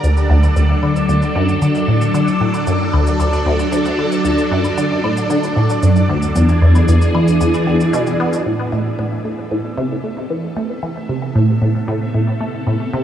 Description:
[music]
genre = ambient, sequencer-driven space music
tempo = 114 BPM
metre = 4/4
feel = straight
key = A minor from 8.5 s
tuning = A4 = 445 Hz
[part]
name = phased string machine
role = sustained chords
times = 0.0-13.0 s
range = C3 to A4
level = -19 LUFS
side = equal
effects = ensemble chorus, phaser, shimmer reverb
[part]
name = resonant blip pluck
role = riff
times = 0.0-13.0 s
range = D2 to B3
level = -16 LUFS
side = equal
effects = phaser, tape echo
[part]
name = cabasa and woodblock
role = percussion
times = 0.0-8.4 s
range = none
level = -32 LUFS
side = left 3 dB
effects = tape echo
[part]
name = bubbling stepped-filter texture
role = texture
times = 0.0-13.0 s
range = D5 to E5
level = -26 LUFS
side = right 2 dB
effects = chorus, built-in reverb, shimmer reverb
[sound]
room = wet huge ambient reverb, RT60 8.5 s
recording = cassette tape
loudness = -14 LUFS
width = side -10 dB against mid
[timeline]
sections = 0.0-8.5 A section; 8.5-13.0 B section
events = fade-in on string machine 8.5-13.0; fade-in on synth texture 8.5-13.0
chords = 0.0 D; 6.4 E7; 8.5 Amadd9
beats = | 0.04 0.56 1.09 1.62 | 2.14 2.67 3.20 3.72 | 4.25 4.78 5.30 5.83 | 6.36 6.88 7.41 7.93 | 8.46 8.99 9.51 10.04 | 10.56 11.09 11.62 12.14 | 12.67

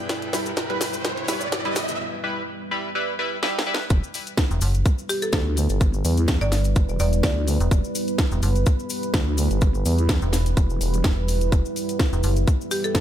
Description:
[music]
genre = bass house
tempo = 126 BPM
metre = 4/4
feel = swing 54% on 16ths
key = E minor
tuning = A4 = 440 Hz
[part]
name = buzzing marimba with hard mallets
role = melody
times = 0.0-0.3, 5.1-7.9, 12.7-13.0 s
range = G4 to D5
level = -29 LUFS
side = right 1 dB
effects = ping-pong delay
[part]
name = deep dark ambient pad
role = sustained chords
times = 0.0-13.0 s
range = G3 to B4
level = -30 LUFS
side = right 1 dB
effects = chorus, built-in reverb, sidechain pumping
[part]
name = riser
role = sound effects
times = 0.0-2.0 s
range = none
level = -30 LUFS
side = right 1 dB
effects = none
[part]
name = airy breathy pad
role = texture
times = 0.0-2.0 s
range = E4 to G5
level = -35 LUFS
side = equal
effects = chorus, sidechain pumping
[part]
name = garage drum kit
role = drums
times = 0.1-13.0 s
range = hi-hat, snare drum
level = -28 LUFS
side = equal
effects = high-pass filter on snare, studio reverb, high-pass filter on hats
[part]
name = cabasa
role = percussion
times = 0.1-13.0 s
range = none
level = -35 LUFS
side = left 7 dB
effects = none
[part]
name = band-passed chord stab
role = stabs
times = 0.3-3.9 s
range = G3 to B4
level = -27 LUFS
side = equal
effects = phaser, analog chorus, sidechain pumping, ping-pong delay
[part]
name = vowel-sweep wobble bass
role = bass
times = 3.9-13.0 s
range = E1 to E2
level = -22 LUFS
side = equal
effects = chorus, tube saturation, sidechain pumping
[part]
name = electronic kick drum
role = drums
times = 3.9-13.0 s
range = none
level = -20 LUFS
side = equal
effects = overdrive, studio reverb
[part]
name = metallic FM bass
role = bass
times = 4.5-12.5 s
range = E1 to G1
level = -21 LUFS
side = equal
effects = tube saturation, sidechain pumping
[sound]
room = digital ambience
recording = none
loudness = -20 LUFS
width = side -11 dB against mid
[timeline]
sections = 0.0-3.9 A section; 3.9-13.0 B section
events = build-up 0.0-3.9; drum fill 0.0-2.0, 3.4-3.9; riser 0.0-2.0; filter sweep on synth stab 0.0-3.9; filter sweep on ambient pad 0.0-3.9; drop 3.9-13.0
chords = 0.0 Em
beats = | 0.09 0.57 1.05 1.52 | 2.00 2.48 2.95 3.43 | 3.90 4.38 4.86 5.33 | 5.81 6.29 6.76 7.24 | 7.71 8.19 8.67 9.14 | 9.62 10.09 10.57 11.05 | 11.52 12.00 12.47 12.95

